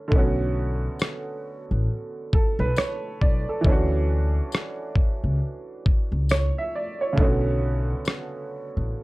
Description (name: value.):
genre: lo-fi hip hop.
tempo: 68 BPM.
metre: 4/4.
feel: swing 60% on 16ths.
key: B minor.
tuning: A4 = 441 Hz.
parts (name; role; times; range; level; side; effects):
clear upright piano; accompaniment; 0.0-9.0 s; C#3 to E5; -28 LUFS; right 2 dB; cassette tape, low-pass filter.
upright bass; bass; 0.1-8.9 s; A1 to D2; -24 LUFS; equal; none.
dusty soul sampler-style drum kit; drums; 0.1-8.3 s; kick drum, rim click; -21 LUFS; equal; vintage 12-bit sampler grit.
tambourine; percussion; 1.0-8.3 s; none; -42 LUFS; left 11 dB; none.
room: little or no reverb.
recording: dark, warm production.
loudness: -22 LUFS.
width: side -20 dB against mid.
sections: 0.1-9.0 A section.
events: hi-hats muted 0.1-9.0.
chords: 0.1 Bm9; 3.6 Dmaj9; 7.2 Bm9.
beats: | 0.12 1.00 1.88 2.77 | 3.65 4.53 5.41 6.29 | 7.18 8.06 8.94.